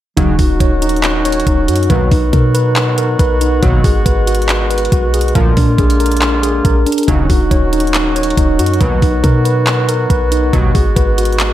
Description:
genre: hip hop, trap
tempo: 139 BPM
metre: 4/4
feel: half-time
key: Eb minor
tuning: A4 = 436 Hz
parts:
  - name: warm woodwind section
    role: sustained chords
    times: 0.2-11.5 s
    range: D3 to Gb4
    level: -22 LUFS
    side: equal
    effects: none
  - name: mellow tine electric piano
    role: arpeggios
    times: 0.2-11.5 s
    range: D4 to Db5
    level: -16 LUFS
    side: equal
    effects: medium stereo tremolo, tape echo
  - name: chorused polysynth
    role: stabs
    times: 0.2-10.7 s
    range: D2 to Gb3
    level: -18 LUFS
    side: right 1 dB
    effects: none
  - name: clean 808-style bass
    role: bass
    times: 0.2-11.5 s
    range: Eb1 to B2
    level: -16 LUFS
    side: equal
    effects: none
  - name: trap drum kit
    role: drums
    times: 0.2-11.5 s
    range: handclaps, hi-hat, kick drum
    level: -16 LUFS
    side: equal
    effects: none
room: digital ambience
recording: none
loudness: -10 LUFS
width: side -13 dB against mid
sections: 0.2-11.5 A section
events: none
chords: 0.2 Ebm7; 1.9 Bmaj7; 3.6 Abm7; 5.4 Bb7; 7.1 Ebm7; 8.8 Bmaj7; 10.5 Abm7

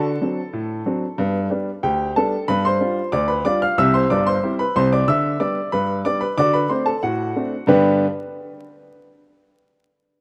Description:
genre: ragtime piano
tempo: 92 BPM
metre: 2/4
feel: straight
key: G major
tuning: A4 = 440 Hz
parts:
  - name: clear upright piano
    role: solo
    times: 0.0-8.1 s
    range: G1 to F6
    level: -20 LUFS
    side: equal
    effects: none
room: moderate plate reverb, RT60 2.6 s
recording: rough home demo mix, vinyl crackle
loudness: -20 LUFS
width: mono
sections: 0.0-7.7 A section; 7.7-9.0 B section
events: none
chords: 0.0 D7; 1.2 G; 2.5 G7; 3.8 C; 5.1 G/D; 6.4 D7; 7.7 G

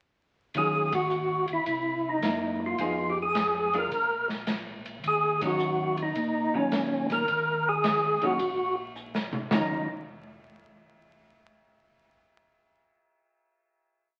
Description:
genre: soul jazz organ trio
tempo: 107 BPM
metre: 4/4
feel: swing 68% on 8ths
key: Eb minor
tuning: A4 = 440 Hz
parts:
  - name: mellow tonewheel organ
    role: bass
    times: 0.5-9.9 s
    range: Bb1 to Bb2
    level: -39 LUFS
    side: equal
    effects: slow rotary speaker
  - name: swinging big-band drum kit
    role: drums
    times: 0.5-9.7 s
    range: hi-hat, kick drum, ride cymbal, snare drum, toms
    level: -37 LUFS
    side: equal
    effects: none
  - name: percussive tonewheel organ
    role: melody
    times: 0.6-9.9 s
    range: Db4 to Bb4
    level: -28 LUFS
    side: equal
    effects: slow rotary speaker, overdrive, chorus vibrato
  - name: vintage hollow-body jazz guitar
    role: accompaniment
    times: 0.6-9.9 s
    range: Eb3 to Ab4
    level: -36 LUFS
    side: equal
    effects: none
room: wet studio reverb, RT60 0.7 s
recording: very old 78 rpm record, vinyl crackle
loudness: -28 LUFS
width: mono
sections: 0.6-9.5 A section; 9.5-11.7 final chord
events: band accent 0.8, 5.3; drum fill 9.0-9.5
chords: 0.6 Ebm9; 1.7 C7; 2.8 Fm7b5; 3.9 N.C.; 5.0 Ebm9

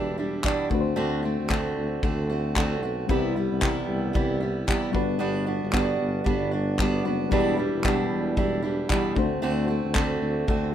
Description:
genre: acoustic pop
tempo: 113 BPM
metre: 4/4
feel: swing 60% on 16ths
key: G major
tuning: A4 = 440 Hz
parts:
  - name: fingerpicked steel-string acoustic guitar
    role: accompaniment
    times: 0.0-10.7 s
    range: E2 to F#4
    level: -26 LUFS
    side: right 3 dB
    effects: none
  - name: reed electric piano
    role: accompaniment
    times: 0.0-10.7 s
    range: G3 to C5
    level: -32 LUFS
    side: left 8 dB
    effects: none
  - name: warm tuba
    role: bass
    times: 0.0-10.7 s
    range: E1 to D2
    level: -29 LUFS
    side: left 1 dB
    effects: none
  - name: loose indie drum kit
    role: drums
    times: 0.4-10.6 s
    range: handclaps, kick drum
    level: -28 LUFS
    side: left 1 dB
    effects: none
room: little or no reverb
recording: minimal, uncompressed stereo recording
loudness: -23 LUFS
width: side -10 dB against mid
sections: 0.0-10.7 A section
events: none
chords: 0.0 Em7; 0.7 D7; 3.1 Cmaj7; 4.9 Gmaj7; 7.3 Em7; 9.2 D7

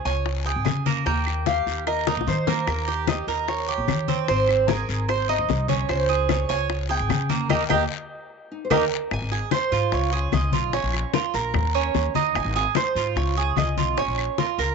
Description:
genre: latin, Cuban son and guajira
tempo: 149 BPM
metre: 4/4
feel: straight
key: Ab major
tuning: A4 = 439 Hz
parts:
  - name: Cuban tres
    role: arpeggios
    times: 0.0-14.7 s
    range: Bb3 to Db5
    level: -26 LUFS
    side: right 12 dB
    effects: none
  - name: upright bass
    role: bass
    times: 0.0-14.7 s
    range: Ab1 to Eb3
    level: -26 LUFS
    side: left 1 dB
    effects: none
  - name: Cuban tres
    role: melody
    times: 0.1-14.7 s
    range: Bb4 to Ab5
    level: -27 LUFS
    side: right 1 dB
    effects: none
  - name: bongos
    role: percussion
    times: 0.1-14.7 s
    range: none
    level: -29 LUFS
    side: left 16 dB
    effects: none
  - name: congas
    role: percussion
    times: 0.1-14.7 s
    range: none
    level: -29 LUFS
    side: left 14 dB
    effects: none
  - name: guiro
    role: percussion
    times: 0.1-14.7 s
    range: none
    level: -35 LUFS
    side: left 16 dB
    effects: none
  - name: claves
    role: percussion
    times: 0.7-14.4 s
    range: none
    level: -32 LUFS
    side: right 12 dB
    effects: none
  - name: nylon-string guitar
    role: second line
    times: 8.5-9.1 s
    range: Eb4 to C5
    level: -26 LUFS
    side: right 6 dB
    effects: none
room: moderate spring reverb, RT60 2.7 s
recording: 1960s-style stereo with parts hard left and right, nothing above 7.9 kHz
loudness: -21 LUFS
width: side -5 dB against mid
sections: 0.0-9.1 A section; 9.1-14.7 B section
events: drum fill 2.1-2.7, 8.7-9.1; band accent 7.5-9.1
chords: 0.0 Db5; 1.1 Eb; 4.3 Ab; 5.9 Db5; 7.5 Eb; 9.1 Ab; 9.9 Db; 10.7 Bbm; 11.5 Eb5; 12.4 Ab; 13.2 Db; 14.0 Bbm

